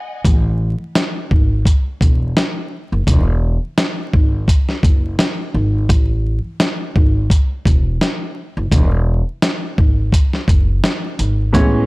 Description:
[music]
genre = hip hop, boom-bap hip-hop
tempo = 85 BPM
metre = 4/4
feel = swing 58% on 16ths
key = E major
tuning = A4 = 438 Hz
[part]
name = upright bass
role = bass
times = 0.2-11.9 s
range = E1 to A1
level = -17 LUFS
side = equal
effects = tube saturation
[part]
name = dusty soul sampler-style drum kit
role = drums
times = 0.2-11.7 s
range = hi-hat, kick drum, snare drum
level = -14 LUFS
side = equal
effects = none
[part]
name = dark grand piano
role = accompaniment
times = 11.5-11.9 s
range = A2 to C#4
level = -14 LUFS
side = right 1 dB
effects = cassette tape, high-pass filter, low-pass filter
[sound]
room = studio ambience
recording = dry, gritty hardware recording, transformer saturation, vinyl crackle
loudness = -14 LUFS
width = side -22 dB against mid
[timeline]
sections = 0.2-11.9 A section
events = break 0.0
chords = 0.2 A5; 3.1 Eadd9; 5.9 A5; 8.7 Eadd9

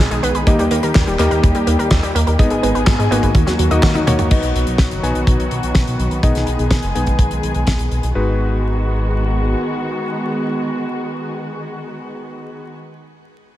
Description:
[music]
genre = italo disco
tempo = 125 BPM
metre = 4/4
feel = straight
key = G# minor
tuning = A4 = 441 Hz
[part]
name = muted studio string section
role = sustained chords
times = 0.0-12.7 s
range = D#3 to G#4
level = -22 LUFS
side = equal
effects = shimmer reverb
[part]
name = analog pluck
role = arpeggios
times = 0.0-4.3 s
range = F#3 to D#5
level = -23 LUFS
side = right 2 dB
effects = chorus, ping-pong delay, shimmer reverb
[part]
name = warm electric grand piano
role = stabs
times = 0.0-12.7 s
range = G#3 to G#5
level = -23 LUFS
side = left 2 dB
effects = low-pass filter, ping-pong delay, shimmer reverb
[part]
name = chorused synth bass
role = bass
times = 0.0-9.6 s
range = D#1 to G#2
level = -19 LUFS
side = equal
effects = none
[part]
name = damped 70s drum kit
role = drums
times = 0.0-8.1 s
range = crash cymbal, handclaps, hi-hat, snare drum, toms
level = -22 LUFS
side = left 1 dB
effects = small room ambience
[part]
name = kick drum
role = drums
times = 0.5-7.8 s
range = none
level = -15 LUFS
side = equal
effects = small room ambience
[sound]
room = light reverb, studio reverb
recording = vinyl crackle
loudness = -14 LUFS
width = side -14 dB against mid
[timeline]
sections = 0.0-4.3 A section; 4.3-8.2 B section; 8.2-12.0 C section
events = drum fill 4.0-4.3; filter sweep on electric grand piano 4.3-8.2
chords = 0.5 D#; 2.4 G#m; 3.4 D#m; 4.3 B; 8.2 G#m7

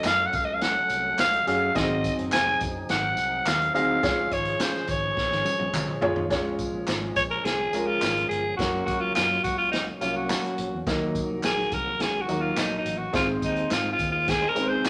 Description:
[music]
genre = uptempo 1960s-style soul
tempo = 105 BPM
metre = 4/4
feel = straight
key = Db major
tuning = A4 = 440 Hz
[part]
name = growling alto saxophone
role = melody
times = 0.0-14.9 s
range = Eb4 to Ab5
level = -27 LUFS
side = equal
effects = none
[part]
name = warm grand piano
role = accompaniment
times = 0.0-14.9 s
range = Gb3 to F5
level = -31 LUFS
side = equal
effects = none
[part]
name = tonewheel organ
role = sustained chords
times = 0.0-14.9 s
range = Eb3 to A4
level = -41 LUFS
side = equal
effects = none
[part]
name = fingered electric bass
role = bass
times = 0.0-14.9 s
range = F1 to Db3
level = -37 LUFS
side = equal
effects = none
[part]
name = handclaps and tambourine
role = percussion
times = 0.0-14.9 s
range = none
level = -39 LUFS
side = equal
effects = none
[part]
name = swinging big-band drum kit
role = drums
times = 0.1-14.9 s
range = hi-hat, kick drum, snare drum, toms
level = -33 LUFS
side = equal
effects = none
[part]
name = semi-hollow electric guitar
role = riff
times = 14.4-14.9 s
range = Ab3 to C5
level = -36 LUFS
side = equal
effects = spring reverb
[sound]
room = moderate large studio reverb, RT60 1.3 s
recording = none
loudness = -25 LUFS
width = mono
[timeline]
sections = 0.0-6.3 A section; 6.3-14.9 B section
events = drum fill 5.2-6.3; alto saxophone solo 6.3-14.9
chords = 0.0 Gbm; 1.8 Ab7; 4.0 Db; 8.6 Gb; 10.9 Ebm; 13.1 Ab

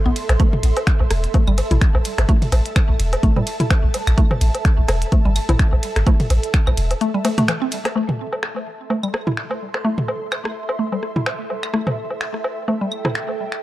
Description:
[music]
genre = minimal techno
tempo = 127 BPM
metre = 4/4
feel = swing 56% on 16ths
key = A minor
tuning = A4 = 439 Hz
[part]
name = ethereal airy pad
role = texture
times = 0.0-13.6 s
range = A4 to C6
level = -29 LUFS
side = right 2 dB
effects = ensemble chorus, built-in reverb, tremolo, sidechain pumping
[part]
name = mallet-like synth pluck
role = riff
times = 0.1-13.1 s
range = E3 to E4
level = -24 LUFS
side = equal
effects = chorus, sidechain pumping, tape echo
[part]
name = punchy sub bass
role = bass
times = 0.1-6.9 s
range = E1 to A2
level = -17 LUFS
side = equal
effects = sidechain pumping
[part]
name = minimal click drum kit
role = drums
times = 0.2-13.6 s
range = finger snaps, hi-hat, ride cymbal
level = -26 LUFS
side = equal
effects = low-pass filter on snare, low-pass filter on hats, low-pass filter on cymbals, low-pass filter on room
[part]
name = garage drum kit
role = percussion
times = 0.3-13.4 s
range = claves, rim click, toms, woodblock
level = -25 LUFS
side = equal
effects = tape echo
[part]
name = electronic kick drum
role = drums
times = 0.4-6.6 s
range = none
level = -16 LUFS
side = equal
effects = overdrive
[sound]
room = little or no reverb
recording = dry, gritty hardware recording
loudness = -17 LUFS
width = side -15 dB against mid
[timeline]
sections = 0.0-8.0 A section; 8.0-13.6 B section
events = drop 0.0-8.0; break 7.0-8.0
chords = 0.0 Am

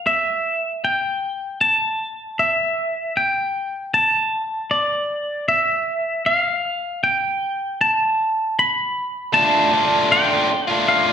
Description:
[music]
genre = rock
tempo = 78 BPM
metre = 3/4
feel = straight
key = unclear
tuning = A4 = 442 Hz
[part]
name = twangy electric guitar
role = melody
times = 0.0-11.1 s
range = D5 to B5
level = -18 LUFS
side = equal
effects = none
[part]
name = tight distorted guitar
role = riff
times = 9.3-11.1 s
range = D3 to F4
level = -17 LUFS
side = equal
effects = distortion
[sound]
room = wet large studio reverb, RT60 1.2 s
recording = band playing live in one room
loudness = -17 LUFS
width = side -8 dB against mid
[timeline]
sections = 0.0-9.3 A section; 9.3-11.1 B section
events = build-up 0.0-9.3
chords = 0.0 N.C.; 9.3 Dm

